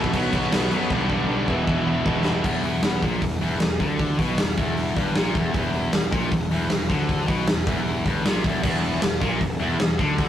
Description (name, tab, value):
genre	hard rock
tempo	155 BPM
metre	4/4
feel	straight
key	E minor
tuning	A4 = 440 Hz
part	distorted electric guitar	riff	0.0-2.9, 8.6-10.3 s	E2 to B3	-28 LUFS	right 1 dB	overdrive
part	heavy high-gain guitar	riff	0.0-10.3 s	E2 to B3	-26 LUFS	left 4 dB	distortion
part	scooped high-gain guitar	riff	0.0-10.3 s	E2 to B3	-30 LUFS	right 4 dB	distortion
part	fuzz fingered electric bass	bass	0.0-10.3 s	E1 to F#2	-29 LUFS	equal	overdrive
part	huge arena drum kit	drums	0.0-10.3 s	crash cymbal, hi-hat, kick drum, snare drum	-24 LUFS	equal	none
room	light reverb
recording	rough rehearsal-room recording, warm saturation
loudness	-20 LUFS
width	side -10 dB against mid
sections	0.0-2.4 A section; 2.4-10.3 B section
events	drum fill 0.9-2.4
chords	0.1 B5; 0.9 G/B; 1.5 E5; 2.4 Em